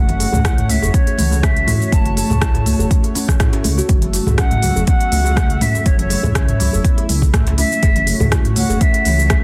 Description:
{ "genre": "afro house", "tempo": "122 BPM", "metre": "4/4", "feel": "swing 54% on 16ths", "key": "unclear", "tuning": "A4 = 440 Hz", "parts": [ { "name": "concert flute", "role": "melody", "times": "0.0-9.4 s", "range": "C#5 to A5", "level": "-24 LUFS", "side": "equal", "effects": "dub echo" }, { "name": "warm analog pad", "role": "sustained chords", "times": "0.0-9.4 s", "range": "A3 to E5", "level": "-30 LUFS", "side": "equal", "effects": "chorus, sidechain pumping" }, { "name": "kalimba", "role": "arpeggios", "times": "0.0-9.4 s", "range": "C#3 to F#4", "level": "-26 LUFS", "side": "equal", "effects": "sidechain pumping, dub echo" }, { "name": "dark detuned saw bass", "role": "bass", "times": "0.0-9.4 s", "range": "F#1 to C#2", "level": "-21 LUFS", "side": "equal", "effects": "sidechain pumping" }, { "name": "afro-pop drum kit", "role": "drums", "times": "0.1-9.4 s", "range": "hi-hat, rim click, shaker, toms", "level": "-23 LUFS", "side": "equal", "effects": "soft clipping on snare" }, { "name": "congas", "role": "percussion", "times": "0.1-9.4 s", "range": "none", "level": "-29 LUFS", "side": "equal", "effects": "none" }, { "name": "djembe", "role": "percussion", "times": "0.2-9.3 s", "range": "none", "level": "-29 LUFS", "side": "equal", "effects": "none" }, { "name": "electronic kick drum", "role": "drums", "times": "0.4-9.4 s", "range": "none", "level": "-18 LUFS", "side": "equal", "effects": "none" } ], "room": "studio ambience", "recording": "dense, heavily limited modern master", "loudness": "-16 LUFS", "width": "mono", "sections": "0.0-9.4 A section", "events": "none", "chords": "0.0 A6/F#; 3.9 F#m7; 7.8 A6/F#" }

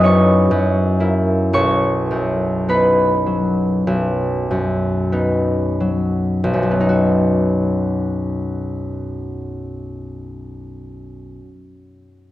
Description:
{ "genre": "classical, solo harp piece", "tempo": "44-69 BPM", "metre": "4/4", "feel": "rubato", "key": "B major", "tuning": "A4 = 441 Hz", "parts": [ { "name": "concert harp", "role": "solo", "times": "0.0-11.8 s", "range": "B1 to F#6", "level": "-16 LUFS", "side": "equal", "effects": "none" } ], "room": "wet concert hall reverb, RT60 1.9 s", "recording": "worn, warbling old tape, cassette tape, warbly pitch drift", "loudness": "-15 LUFS", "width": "side -14 dB against mid", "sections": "0.0-6.4 A section; 6.4-11.3 B section", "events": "slowing down 0.0-6.4", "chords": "0.5 F#7; 1.5 B" }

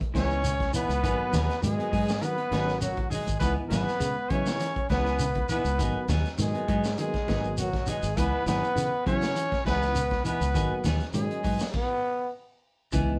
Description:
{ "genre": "afrobeat", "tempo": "101 BPM", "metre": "4/4", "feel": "swing 53% on 16ths", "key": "C# dorian", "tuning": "A4 = 440 Hz", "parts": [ { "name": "clean electric guitar", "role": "arpeggios", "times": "0.0-13.0 s", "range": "B2 to G#3", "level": "-38 LUFS", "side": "equal", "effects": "none" }, { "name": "crunchy breakbeat drum kit", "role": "drums", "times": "0.0-13.1 s", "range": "crash cymbal, hi-hat, kick drum, snare drum", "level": "-35 LUFS", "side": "equal", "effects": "none" }, { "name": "tonewheel organ", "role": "accompaniment", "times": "0.1-13.2 s", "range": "E3 to F#4", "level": "-39 LUFS", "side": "equal", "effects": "slow rotary speaker, chorus vibrato" }, { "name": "clean electric guitar", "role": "stabs", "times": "0.1-13.1 s", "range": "E3 to G#4", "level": "-38 LUFS", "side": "equal", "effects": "none" }, { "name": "fingered electric bass", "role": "bass", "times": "0.1-13.2 s", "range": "G#1 to C#3", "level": "-32 LUFS", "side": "equal", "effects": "none" }, { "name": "growling trombone", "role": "melody", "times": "0.2-12.3 s", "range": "F#3 to C#4", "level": "-32 LUFS", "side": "equal", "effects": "none" }, { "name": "bright trumpet", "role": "second line", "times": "0.2-11.7 s", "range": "F#4 to C#5", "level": "-38 LUFS", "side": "equal", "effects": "none" }, { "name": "shekere", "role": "percussion", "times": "0.2-13.1 s", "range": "none", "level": "-39 LUFS", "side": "equal", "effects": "none" } ], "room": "moderate studio reverb, RT60 0.6 s", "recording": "band playing live in one room", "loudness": "-27 LUFS", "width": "mono", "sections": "0.0-12.9 A section", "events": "stop 11.7-12.9", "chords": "0.0 C#m7; 1.0 G#m7; 3.4 C#m7; 5.8 G#m7; 8.2 C#m7; 10.5 G#m7" }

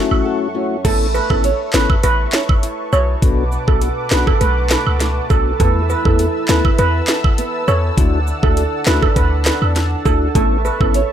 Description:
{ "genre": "dancehall", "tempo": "101 BPM", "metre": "4/4", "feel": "straight", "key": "unclear", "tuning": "A4 = 440 Hz", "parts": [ { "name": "mellow tonewheel organ", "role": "accompaniment", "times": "0.0-11.0 s", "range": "A3 to A4", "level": "-23 LUFS", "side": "left 7 dB", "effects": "slow rotary speaker, sidechain pumping" }, { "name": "warm analog pad", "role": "sustained chords", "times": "0.0-11.1 s", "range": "A4 to E6", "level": "-26 LUFS", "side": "equal", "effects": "chorus, sidechain pumping" }, { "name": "flamenco guitar", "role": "arpeggios", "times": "0.0-11.1 s", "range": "F#2 to C#5", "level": "-24 LUFS", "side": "right 3 dB", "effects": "ping-pong delay" }, { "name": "clean 808-style bass", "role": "bass", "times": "0.1-11.0 s", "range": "G#1 to E2", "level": "-18 LUFS", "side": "equal", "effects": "none" }, { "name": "woodblock and cabasa", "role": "percussion", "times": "0.1-10.9 s", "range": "none", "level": "-27 LUFS", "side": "right 12 dB", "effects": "none" }, { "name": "steel pan", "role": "melody", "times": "0.8-11.0 s", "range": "A4 to C#5", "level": "-20 LUFS", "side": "right 4 dB", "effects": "ping-pong delay" }, { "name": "afro-pop drum kit", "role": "drums", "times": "0.8-11.1 s", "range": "crash cymbal, handclaps, hi-hat, kick drum, snare drum", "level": "-17 LUFS", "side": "equal", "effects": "none" } ], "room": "little or no reverb", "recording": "none", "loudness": "-13 LUFS", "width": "side -10 dB against mid", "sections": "0.8-11.1 A section", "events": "break 0.3-0.8", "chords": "0.0 F#m7; 0.8 Aadd9; 3.2 Bm7; 5.6 Esus4; 8.0 Dadd9; 10.4 Aadd9" }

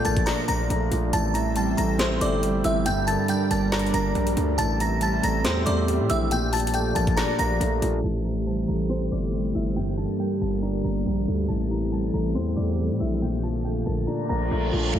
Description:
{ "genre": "hip hop, trap", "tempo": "139 BPM", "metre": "4/4", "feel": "half-time", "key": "A phrygian", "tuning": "A4 = 439 Hz", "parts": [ { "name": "delicate synth tine bell", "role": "melody", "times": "0.0-14.9 s", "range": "C5 to Bb6", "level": "-29 LUFS", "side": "equal", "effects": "chorus, phaser, analog delay" }, { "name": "dark baby grand piano", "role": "accompaniment", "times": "0.0-15.0 s", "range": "G2 to D4", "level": "-26 LUFS", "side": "right 1 dB", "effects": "low-pass filter" }, { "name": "airy breathy pad", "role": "sustained chords", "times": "0.0-15.0 s", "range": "Bb2 to E5", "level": "-31 LUFS", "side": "left 1 dB", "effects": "chorus" }, { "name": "distorted 808-style bass", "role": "bass", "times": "0.1-15.0 s", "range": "G1 to A2", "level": "-27 LUFS", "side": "equal", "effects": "distortion" }, { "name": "trap drum kit", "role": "drums", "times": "0.1-7.9 s", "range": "handclaps, hi-hat, kick drum, snare drum", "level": "-30 LUFS", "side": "left 1 dB", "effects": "none" }, { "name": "reverse cymbal", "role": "sound effects", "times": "14.3-14.9 s", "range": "none", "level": "-32 LUFS", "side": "right 3 dB", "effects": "none" } ], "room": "moderate lush hall reverb, RT60 1.7 s, digital ambience", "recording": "dreamy mix soaked in reverb, low-pass filter", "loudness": "-22 LUFS", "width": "side -10 dB against mid", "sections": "0.0-8.0 A section; 8.0-14.9 B section", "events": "filter sweep 8.0-14.9; reverse cymbal 14.3-14.9", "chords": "0.0 Bbmaj7; 1.1 Am7; 2.9 Gm; 4.6 Am7; 6.3 Bbmaj7; 8.0 Am7; 9.8 Gm; 11.5 Am7; 13.2 Bbmaj7" }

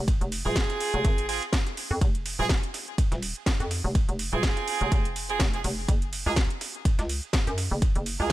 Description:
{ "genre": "bass house", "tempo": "124 BPM", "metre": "4/4", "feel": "swing 56% on 16ths", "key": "F phrygian", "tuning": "A4 = 440 Hz", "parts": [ { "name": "hollow knocking FM bass", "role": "bass", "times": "0.0-8.3 s", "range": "Eb1 to Gb2", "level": "-30 LUFS", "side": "equal", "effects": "tube saturation, sidechain pumping" }, { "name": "dusty soul sampler-style drum kit", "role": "drums", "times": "0.1-8.2 s", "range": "hi-hat, ride cymbal, snare drum", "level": "-41 LUFS", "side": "right 3 dB", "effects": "sidechain pumping on cymbals, high-pass filter on cymbals, high-pass filter on snare, sidechain pumping on hats, high-pass filter on hats" }, { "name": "electronic kick drum", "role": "drums", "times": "0.1-7.9 s", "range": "none", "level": "-24 LUFS", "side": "equal", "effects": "none" }, { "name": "house drum kit", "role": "drums", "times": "0.1-8.3 s", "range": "hi-hat, snare drum", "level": "-32 LUFS", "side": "equal", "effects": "none" }, { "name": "bright horn section", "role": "stabs", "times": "0.5-8.3 s", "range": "Bb3 to Ab4", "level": "-30 LUFS", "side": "right 4 dB", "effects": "sidechain pumping, ping-pong delay" } ], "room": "digital ambience", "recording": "none", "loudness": "-24 LUFS", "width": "side -16 dB against mid", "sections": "0.0-8.3 A section", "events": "none", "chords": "0.0 Fm; 5.9 Gb5" }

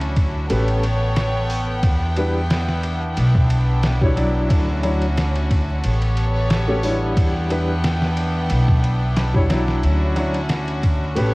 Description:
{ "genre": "trip hop", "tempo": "90 BPM", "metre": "4/4", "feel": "swing 54% on 16ths", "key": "E dorian", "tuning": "A4 = 440 Hz", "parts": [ { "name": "clear chamber violin section", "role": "sustained chords", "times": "0.0-11.3 s", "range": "B3 to G5", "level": "-26 LUFS", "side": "equal", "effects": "vintage 12-bit sampler grit" }, { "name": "upright bass", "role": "bass", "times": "0.0-11.3 s", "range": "A1 to E2", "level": "-20 LUFS", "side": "equal", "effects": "none" }, { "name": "trip hop sampler-style drum kit", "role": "drums", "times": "0.0-11.3 s", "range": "hi-hat, kick drum, ride cymbal, snare drum", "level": "-22 LUFS", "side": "equal", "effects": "none" }, { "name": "felt-muted upright piano", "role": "accompaniment", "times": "0.5-11.3 s", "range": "F#3 to D5", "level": "-24 LUFS", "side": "equal", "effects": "tremolo, tape echo" } ], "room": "little or no reverb", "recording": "worn, warbling old tape, cassette tape, vinyl crackle, warbly pitch drift", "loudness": "-17 LUFS", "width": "side -23 dB against mid", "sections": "0.0-11.3 A section", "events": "none", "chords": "0.5 A9; 1.8 Em7; 4.5 Dmaj9; 5.8 A9; 7.2 Em7; 9.8 Dmaj9" }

